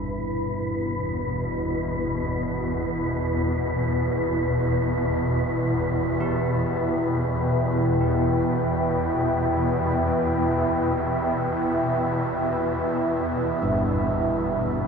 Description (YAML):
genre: dark ambient drone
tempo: free time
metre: none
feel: none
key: E minor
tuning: A4 = 440 Hz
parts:
  - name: dark analog pad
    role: sustained chords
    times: 0.0-14.9 s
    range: E4 to G5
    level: -26 LUFS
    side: equal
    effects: chorus
  - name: carillon bells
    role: arpeggios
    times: 0.0-14.9 s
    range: G2 to E4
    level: -34 LUFS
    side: equal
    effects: ping-pong delay
  - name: swarming drone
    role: drone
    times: 0.1-14.9 s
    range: E2 to B2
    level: -25 LUFS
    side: equal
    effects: built-in reverb
  - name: wind-like tuned noise texture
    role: texture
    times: 0.0-14.9 s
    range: B4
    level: -31 LUFS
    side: equal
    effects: built-in reverb
room: wet cathedral reverb, RT60 5.5 s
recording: in a vast, echoing space, cassette tape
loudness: -22 LUFS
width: side -6 dB against mid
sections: 0.0-14.9 A section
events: none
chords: 0.0 Em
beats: free time